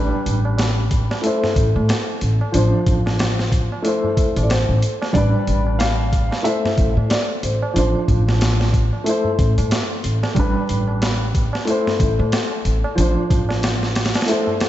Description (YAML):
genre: trip hop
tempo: 92 BPM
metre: 4/4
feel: swing 59% on 16ths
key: unclear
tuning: A4 = 439 Hz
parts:
  - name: dark upright piano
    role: accompaniment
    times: 0.0-14.7 s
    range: F3 to C5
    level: -22 LUFS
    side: equal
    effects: tremolo, tape echo
  - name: upright bass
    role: bass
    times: 0.0-14.1 s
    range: A1 to A2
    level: -19 LUFS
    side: equal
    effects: tube saturation
  - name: tabla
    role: percussion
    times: 0.1-14.6 s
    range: none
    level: -30 LUFS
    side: right 1 dB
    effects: none
  - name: boom bap sampler-style drum kit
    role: drums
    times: 0.3-14.7 s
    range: hi-hat, kick drum, snare drum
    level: -22 LUFS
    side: equal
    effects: none
  - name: felt-muted upright piano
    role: melody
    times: 4.4-9.3 s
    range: C5 to F5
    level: -25 LUFS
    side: left 1 dB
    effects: tape echo
room: moderate lush hall reverb, RT60 2.6 s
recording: dreamy mix soaked in reverb, vinyl crackle, nothing above 7.9 kHz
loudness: -16 LUFS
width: side -13 dB against mid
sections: 0.0-14.7 A section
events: none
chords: 0.0 G/A; 1.2 C6/A; 2.5 Dm7/A; 3.8 Am; 5.2 G/A; 6.5 C6/A; 7.8 Dm7/A; 9.1 Am; 10.4 G/A; 11.7 C6/A; 13.0 Dm7/A